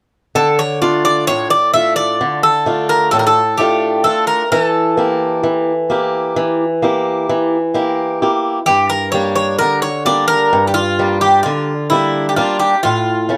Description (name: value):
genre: greek folk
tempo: 130 BPM (eighths)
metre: 9/8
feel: straight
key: D harmonic minor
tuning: A4 = 441 Hz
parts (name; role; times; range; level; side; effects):
- Greek bouzouki; melody; 0.4-13.4 s; E4 to E5; -17 LUFS; equal; none
- picked swing-style acoustic guitar; accompaniment; 0.4-13.4 s; G2 to G4; -18 LUFS; equal; none
room: moderate studio reverb, RT60 0.5 s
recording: none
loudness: -15 LUFS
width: mono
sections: 0.3-13.4 A section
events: none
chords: 0.3 Dm; 4.5 Edim; 8.7 Gm; 12.8 A